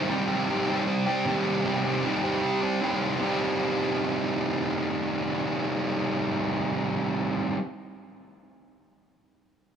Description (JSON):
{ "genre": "rock", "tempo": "153 BPM", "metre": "4/4", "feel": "straight", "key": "C minor", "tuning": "A4 = 440 Hz", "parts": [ { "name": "fuzz guitar", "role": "solo", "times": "0.0-7.6 s", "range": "C3 to G4", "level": "-25 LUFS", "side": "right 1 dB", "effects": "distortion" } ], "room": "light reverb", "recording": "small room ambience", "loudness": "-24 LUFS", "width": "side -8 dB against mid", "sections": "0.1-3.2 A section; 3.2-6.3 B section", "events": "none", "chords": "0.1 Cm", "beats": "| 0.08 0.47 0.86 1.25 | 1.64 2.03 2.42 2.81 | 3.20 3.60 3.99 4.38 | 4.77 5.16 5.55 5.95" }